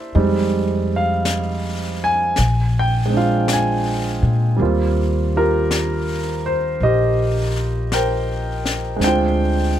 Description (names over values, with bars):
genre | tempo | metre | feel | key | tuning
jazz ballad | 54 BPM | 4/4 | swing 67% on 8ths | Eb major | A4 = 439 Hz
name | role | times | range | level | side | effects
warm grand piano | accompaniment | 0.0-9.8 s | G3 to Ab5 | -19 LUFS | right 2 dB | none
upright bass | bass | 0.1-9.8 s | Bb1 to Bb2 | -20 LUFS | left 1 dB | none
jazz brush drum kit | drums | 0.1-9.8 s | brushed snare drum, hi-hat, snare drum | -28 LUFS | left 4 dB | none
room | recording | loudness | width
little or no reverb | close, detailed microphones | -17 LUFS | side -11 dB against mid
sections
0.0-4.6 A section; 4.6-9.8 B section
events
none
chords
0.2 Fm7; 2.4 Bb7; 4.6 Eb69; 9.0 Dm7b5